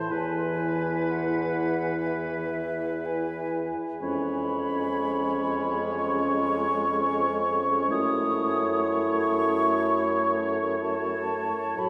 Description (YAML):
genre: classical, slow romantic movement for wind quintet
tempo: 62 BPM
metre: 4/4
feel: rubato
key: unclear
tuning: A4 = 441 Hz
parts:
  - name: mellow hollow silver concert flute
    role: melody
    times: 0.0-11.9 s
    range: E5 to D#6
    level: -32 LUFS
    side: equal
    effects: none
  - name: warm oboe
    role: second line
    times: 0.0-11.9 s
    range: B4 to C#5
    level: -35 LUFS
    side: equal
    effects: none
  - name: clear French horn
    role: accompaniment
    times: 0.0-11.9 s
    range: E3 to A3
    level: -35 LUFS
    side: equal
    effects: none
  - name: mellow clarinet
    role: accompaniment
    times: 0.0-11.9 s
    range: C#4 to F#4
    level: -34 LUFS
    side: equal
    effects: none
  - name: dark bassoon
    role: bass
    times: 0.0-11.9 s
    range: E2 to A2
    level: -33 LUFS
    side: equal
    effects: none
room: wet cathedral reverb, RT60 5.9 s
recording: heard from further back in the room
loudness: -26 LUFS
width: mono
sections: 0.0-11.9 A section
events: none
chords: 0.1 E; 4.0 C#7/E#; 7.9 F#m7